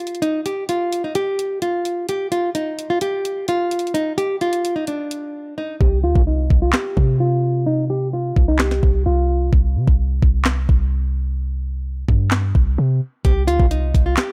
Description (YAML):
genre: hip hop, trap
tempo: 129 BPM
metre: 4/4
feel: half-time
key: C minor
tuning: A4 = 439 Hz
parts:
  - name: nylon-string guitar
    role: melody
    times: 0.0-9.5, 13.2-14.3 s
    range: D4 to G4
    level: -23 LUFS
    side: equal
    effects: low-pass filter, tape echo
  - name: trap drum kit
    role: drums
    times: 0.1-14.3 s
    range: handclaps, hi-hat, kick drum, snare drum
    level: -20 LUFS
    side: equal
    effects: none
  - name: warm 808-style bass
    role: bass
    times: 5.8-14.2 s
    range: C2 to C3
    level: -21 LUFS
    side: equal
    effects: none
room: little or no reverb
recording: none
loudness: -19 LUFS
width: mono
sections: 0.0-5.8 A section; 5.8-14.3 B section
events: break 5.3-5.8; hi-hats muted 5.8-13.2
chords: 0.0 N.C.; 5.8 C5